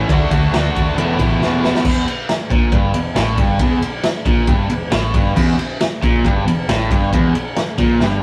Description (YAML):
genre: classic rock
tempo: 137 BPM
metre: 4/4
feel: straight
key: unclear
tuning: A4 = 443 Hz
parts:
  - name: lightly driven lead guitar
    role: melody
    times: 0.0-0.5 s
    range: E5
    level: -35 LUFS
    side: equal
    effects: none
  - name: distorted electric guitar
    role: riff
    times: 0.0-8.2 s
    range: E2 to F#4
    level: -22 LUFS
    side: equal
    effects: distortion
  - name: overdriven electric guitar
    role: riff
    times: 0.0-1.9, 5.4-8.2 s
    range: E2 to F#4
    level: -22 LUFS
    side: equal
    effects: none
  - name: hollow-body short-scale picked electric bass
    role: bass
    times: 0.1-8.2 s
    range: E1 to D#2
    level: -23 LUFS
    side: equal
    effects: none
  - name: raw garage drum kit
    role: drums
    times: 0.1-8.1 s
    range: crash cymbal, kick drum, ride cymbal, snare drum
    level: -20 LUFS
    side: equal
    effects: none
room: moderate studio reverb, RT60 0.6 s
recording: rough rehearsal-room recording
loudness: -17 LUFS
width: mono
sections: 0.0-1.9 A section; 1.9-8.2 B section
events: drum fill 1.4-1.9, 8.0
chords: 0.1 D; 1.0 Esus4; 1.9 Edim